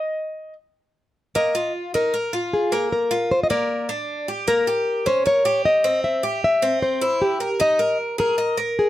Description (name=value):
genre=latin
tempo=154 BPM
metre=4/4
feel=straight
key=unclear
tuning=A4 = 442 Hz
part: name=Cuban tres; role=arpeggios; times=0.0-8.9 s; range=Bb3 to Eb5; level=-24 LUFS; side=right 2 dB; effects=none
part: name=nylon-string guitar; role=melody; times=1.4-8.9 s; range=G4 to E5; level=-20 LUFS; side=left 1 dB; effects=none
room=light reverb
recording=close, detailed microphones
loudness=-19 LUFS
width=side -14 dB against mid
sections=0.0-1.4 A section; 1.4-8.9 B section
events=Cuban tres solo 0.0-1.4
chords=0.0 N.C.; 1.4 Ebsus2; 2.9 Bb; 4.5 Gdim/Bb; 6.0 C; 7.6 Ebsus4